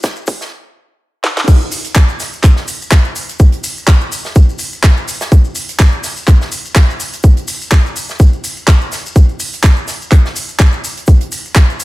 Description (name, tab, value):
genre	house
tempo	125 BPM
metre	4/4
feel	swing 55% on 16ths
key	none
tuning	none
part	electronic kick drum	drums	0.0-11.7 s	none	-8 LUFS	equal	none
part	natural country drum kit	drums	0.0-11.8 s	hi-hat, shaker, snare drum	-27 LUFS	right 1 dB	high-pass filter on hats, high-pass filter on snare, high-pass filter on perc, high-pass filter on room
part	maracas	percussion	0.0-11.8 s	none	-26 LUFS	left 3 dB	none
part	garage drum kit	drums	0.3-11.8 s	crash cymbal, handclaps, hi-hat, snare drum	-18 LUFS	right 1 dB	none
room	little or no reverb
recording	high-pass filter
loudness	-10 LUFS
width	side -19 dB against mid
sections	0.0-1.5 A section; 1.5-11.8 B section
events	build-up 0.0-1.5; drum fill 0.0-0.5, 1.2; drop 1.5-11.8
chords	none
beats	0.04 0.52 1.00 | 1.48 1.96 2.44 2.92 | 3.40 3.88 4.36 4.84 | 5.32 5.80 6.28 6.76 | 7.24 7.72 8.20 8.68 | 9.16 9.64 10.12 10.60 | 11.08 11.56